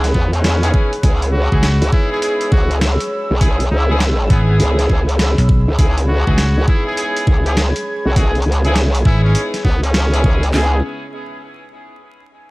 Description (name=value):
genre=glitch hop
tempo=101 BPM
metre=4/4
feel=swing 64% on 16ths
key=C# minor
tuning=A4 = 443 Hz
part: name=dark analog pad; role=sustained chords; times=0.0-10.8 s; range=C#4 to G#6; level=-25 LUFS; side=equal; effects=chorus, sidechain pumping
part: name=mellow horn section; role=stabs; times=0.0-10.8 s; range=B3 to G#4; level=-24 LUFS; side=equal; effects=sidechain pumping, tape echo
part: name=growl bass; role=bass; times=0.0-10.8 s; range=B1 to E2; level=-15 LUFS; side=equal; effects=chorus, tube saturation
part: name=boom bap sampler-style drum kit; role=drums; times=0.0-10.5 s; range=hi-hat, rim click, snare drum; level=-22 LUFS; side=equal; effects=studio reverb
part: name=bright trumpet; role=melody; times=0.1-10.4 s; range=B3 to G#4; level=-27 LUFS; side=equal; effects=tape echo
part: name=drum and bass drum kit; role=drums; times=0.1-10.7 s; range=handclaps, kick drum, snare drum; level=-14 LUFS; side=equal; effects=overdrive, studio reverb
part: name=vintage slap bass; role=bass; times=1.5-9.3 s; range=G#1 to C#2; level=-14 LUFS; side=equal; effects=transformer saturation
room=little or no reverb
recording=dry, gritty hardware recording, vinyl crackle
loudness=-13 LUFS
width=side -22 dB against mid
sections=0.0-10.5 A section; 10.5-12.5 B section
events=drop 0.0-10.5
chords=0.0 C#m7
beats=0.44 | 1.03 1.63 2.22 2.82 | 3.41 4.00 4.60 5.19 | 5.79 6.38 6.97 7.57 | 8.16 8.76 9.35 9.95 | 10.54